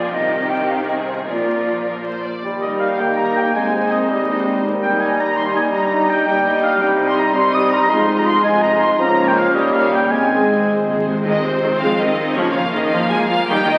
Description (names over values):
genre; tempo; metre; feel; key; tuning
classical; 108 BPM (dotted quarters); 6/8; rubato; Eb major, Ab major from 6.8 s; A4 = 440 Hz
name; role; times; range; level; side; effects
warm symphonic violin section; melody; 0.0-13.8 s; G4 to Ab5; -28 LUFS; equal; none
concert flute; second line; 0.0-10.7 s; C5 to Eb6; -26 LUFS; equal; none
rich symphonic violin section; second line; 0.0-13.8 s; C4 to Eb6; -30 LUFS; equal; none
rich symphonic viola section; accompaniment; 0.0-13.8 s; Db3 to Ab4; -25 LUFS; equal; none
rich symphonic cello section; bass; 0.0-13.8 s; Db2 to Ab3; -28 LUFS; equal; none
rich symphonic double bass section; bass; 0.0-13.8 s; F1 to Eb2; -37 LUFS; equal; none
mellow clarinet; second line; 2.4-11.1 s; Bb3 to Eb4; -31 LUFS; equal; none
warm bassoon; accompaniment; 2.4-11.1 s; F3 to Bb3; -23 LUFS; equal; none
mellow French horn section; sustained chords; 2.4-11.1 s; F3 to Ab4; -27 LUFS; equal; none
warm oboe; second line; 2.6-10.7 s; Eb5 to Eb6; -23 LUFS; equal; none
timpani; percussion; 10.1-11.2 s; Ab2; -34 LUFS; equal; none
room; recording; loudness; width
wet scoring stage reverb, RT60 2.0 s; very old 78 rpm record, vinyl crackle; -17 LUFS; mono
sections
0.0-2.4 A section; 2.4-11.3 B section; 11.3-13.8 A section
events
timpani fill 10.1-11.3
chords
0.1 Cm; 1.3 Bb; 2.4 Eb; 3.5 Ab/Eb; 4.6 Eb; 5.7 Eb/G; 6.8 Cm; 7.9 Fm7; 9.0 Bbm/Db; 9.5 Eb7; 10.1 Ab; 12.4 Bbm7/Ab